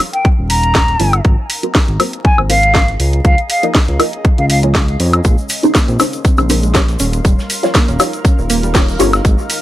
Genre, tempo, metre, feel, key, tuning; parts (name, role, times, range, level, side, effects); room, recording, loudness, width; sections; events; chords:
deep house; 120 BPM; 4/4; swing 54% on 16ths; A4 = 440 Hz
filtered dub chord stab; stabs; 0.0-9.1 s; Db4 to Eb5; -18 LUFS; equal; phaser, lush chorus, sidechain pumping, dub echo
house drum kit; drums; 0.0-9.6 s; hi-hat, snare drum, woodblock; -17 LUFS; equal
granular cloud pad; texture; 0.0-9.6 s; Db4 to C6; -29 LUFS; equal; built-in reverb, sidechain pumping
hollow concert flute; melody; 0.1-4.6 s; F5 to Bb5; -17 LUFS; left 1 dB; dub echo
electronic kick drum; drums; 0.2-9.4 s; -12 LUFS; equal
smooth synth bass; bass; 0.4-9.4 s; Eb1 to F2; -15 LUFS; equal; tube saturation, sidechain pumping
soft round pluck; arpeggios; 5.2-9.3 s; G3 to Eb4; -22 LUFS; right 2 dB; chorus, sidechain pumping, dub echo
modern studio drum kit; drums; 5.2-9.6 s; hi-hat, snare drum; -30 LUFS; right 4 dB
egg shaker; percussion; 5.2-9.6 s; -27 LUFS; left 2 dB
little or no reverb; vinyl crackle; -10 LUFS; side -14 dB against mid
0.0-9.6 A section
fade-in on ambient pad 0.0-9.6; filter sweep on synth stab 0.0-9.6
0.0 Eb9; 1.2 Ab9; 3.0 Db69; 5.2 Bbm11; 7.0 Eb9